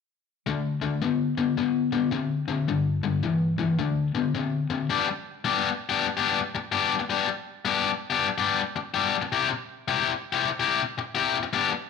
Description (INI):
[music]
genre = blues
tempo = 108 BPM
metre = 4/4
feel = swing 64% on 8ths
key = G major from 4.9 s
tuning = A4 = 440 Hz
[part]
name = overdriven electric guitar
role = solo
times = 0.5-11.8 s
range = G2 to G4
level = -23 LUFS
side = left 6 dB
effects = none
[sound]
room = moderate echo chamber reverb, RT60 1.2 s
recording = none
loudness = -24 LUFS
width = side -5 dB against mid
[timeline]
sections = 0.5-4.9 A section; 4.9-11.9 B section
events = none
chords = 0.5 D5; 2.7 G5; 3.8 D5; 4.9 G; 9.3 C